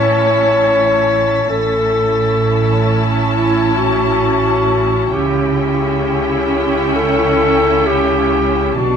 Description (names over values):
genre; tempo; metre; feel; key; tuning
cinematic, suspense film score; 66 BPM; 4/4; straight; unclear; A4 = 444 Hz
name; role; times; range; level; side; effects
warm studio violin section; melody; 0.0-9.0 s; G5 to A5; -24 LUFS; left 5 dB; none
warm clarinet; second line; 0.0-9.0 s; E4 to C#5; -15 LUFS; left 3 dB; none
rich studio viola section; accompaniment; 0.0-9.0 s; C#4 to E4; -19 LUFS; right 2 dB; none
clear studio cello section; bass; 0.0-9.0 s; A2 to C#3; -21 LUFS; right 3 dB; none
rich studio double bass section; bass; 0.0-9.0 s; A1 to C#2; -21 LUFS; right 5 dB; none
rich studio violin section; texture; 0.0-4.7 s; A6 to B6; -29 LUFS; left 1 dB; none
room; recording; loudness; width
wet recital hall reverb, RT60 1.5 s; none; -12 LUFS; side -7 dB against mid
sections
0.0-9.0 A section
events
none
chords
0.0 Aadd9; 5.1 C#dim